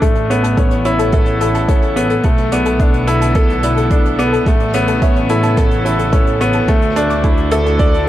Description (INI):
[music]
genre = piano and strings electronica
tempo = 108 BPM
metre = 4/4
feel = straight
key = A major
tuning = A4 = 440 Hz
[part]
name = muted string quartet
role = sustained chords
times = 0.0-8.1 s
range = C#3 to A4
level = -26 LUFS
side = right 1 dB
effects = sidechain pumping
[part]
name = soft round pluck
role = arpeggios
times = 0.0-7.8 s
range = A4 to D6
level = -22 LUFS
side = left 2 dB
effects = chorus, sidechain pumping, tape echo
[part]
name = clear upright piano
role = riff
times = 0.0-8.1 s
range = A3 to D5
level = -16 LUFS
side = equal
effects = low-pass filter, tape echo
[part]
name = warm studio double bass section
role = bass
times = 0.0-8.1 s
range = A1 to D2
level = -19 LUFS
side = equal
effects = sidechain pumping
[part]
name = electronic kick drum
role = drums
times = 0.0-7.9 s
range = none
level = -14 LUFS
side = equal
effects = overdrive
[part]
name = hi-hat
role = drums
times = 0.0-8.1 s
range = none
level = -34 LUFS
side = right 6 dB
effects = none
[sound]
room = light reverb, small room ambience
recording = none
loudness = -12 LUFS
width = side -13 dB against mid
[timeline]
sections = 0.0-8.1 A section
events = fade-in on string quartet 0.0-8.1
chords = 0.0 Aadd9; 2.2 E7sus4/B; 4.5 Aadd9; 6.7 Dsus2